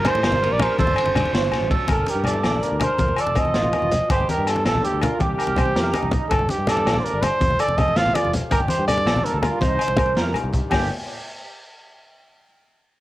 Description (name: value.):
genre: highlife guitar band.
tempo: 109 BPM (dotted quarters).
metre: 12/8.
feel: straight.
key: G minor.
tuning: A4 = 440 Hz.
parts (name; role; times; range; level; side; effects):
breathy trumpet; melody; 0.0-10.9 s; G4 to F5; -23 LUFS; right 1 dB; cassette tape, analog delay.
nylon-string guitar; accompaniment; 0.0-10.9 s; G2 to Bb4; -32 LUFS; left 5 dB; cassette tape.
electric guitar through a small old amp; arpeggios; 0.0-10.9 s; Eb4 to D5; -27 LUFS; right 4 dB; analog chorus, cassette tape.
fingered electric bass; bass; 0.0-10.9 s; F1 to A2; -27 LUFS; equal; none.
congas; percussion; 0.0-10.9 s; none; -26 LUFS; left 1 dB; none.
crunchy breakbeat drum kit; drums; 0.1-10.8 s; hi-hat, kick drum, ride cymbal, snare drum; -25 LUFS; equal; cassette tape.
agogo bells; percussion; 0.1-10.8 s; none; -30 LUFS; left 6 dB; none.
room: light reverb.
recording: home recording on cassette.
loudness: -18 LUFS.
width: side -16 dB against mid.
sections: 0.0-1.9 A section; 1.9-10.7 B section; 10.7-12.9 C section.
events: drum fill 1.3-1.9, 10.2-10.7.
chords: 0.0 Cm7/G; 0.8 D7/G; 1.9 Gmadd9; 3.0 F7; 4.1 Gmadd9; 5.2 Cm7; 6.3 Gm; 7.4 F; 8.5 Gmadd9; 9.6 Cm7; 10.7 Gm.